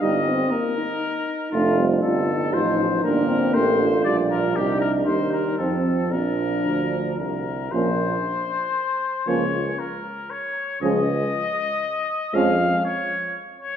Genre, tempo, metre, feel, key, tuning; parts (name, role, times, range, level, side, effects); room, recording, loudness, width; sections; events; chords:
classical, brass quintet; 118 BPM; 3/4; straight; Bb major; A4 = 442 Hz
clear trumpet; melody; 0.0-13.8 s; F4 to F5; -26 LUFS; left 3 dB
dark flugelhorn; second line; 0.0-12.5 s; C4 to G4; -28 LUFS; right 4 dB
mellow French horn; accompaniment; 0.0-12.5 s; Ab3 to F4; -26 LUFS; left 2 dB
warm euphonium; accompaniment; 0.0-12.5 s; F3 to Bb3; -26 LUFS; right 2 dB
clear tuba; bass; 0.0-12.8 s; F1 to F2; -26 LUFS; right 2 dB
wet recital hall reverb, RT60 1.7 s; heard from further back in the room; -20 LUFS; side -8 dB against mid
0.0-7.7 A section; 7.7-13.8 B section
0.0 Eb/G; 1.5 F; 3.0 Gm; 4.6 Cm; 5.1 Cm/Eb; 5.6 F; 6.1 Bb; 7.7 N.C.; 9.3 Bbm/Db; 10.8 Db; 12.3 Db/F